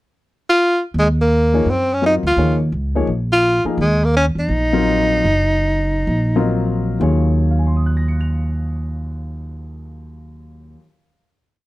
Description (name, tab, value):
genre	jazz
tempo	119-170 BPM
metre	4/4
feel	swing 63% on 8ths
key	Eb dorian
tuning	A4 = 439 Hz
part	warm tenor saxophone	melody	0.5-6.5 s	Ab3 to F4	-16 LUFS	equal	none
part	upright bass	bass	0.9-10.7 s	Gb1 to Gb2	-19 LUFS	equal	none
part	warm baby grand piano	accompaniment	1.5-11.7 s	Eb2 to F7	-21 LUFS	left 4 dB	none
room	little or no reverb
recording	dry, close 1970s-style studio recording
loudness	-15 LUFS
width	side -18 dB against mid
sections	0.0-1.0 pickup bar; 1.0-7.0 A section; 7.0-11.0 final chord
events	slowing down 3.8-7.0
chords	0.0 N.C.; 1.0 Ebm9; 7.0 Ebm11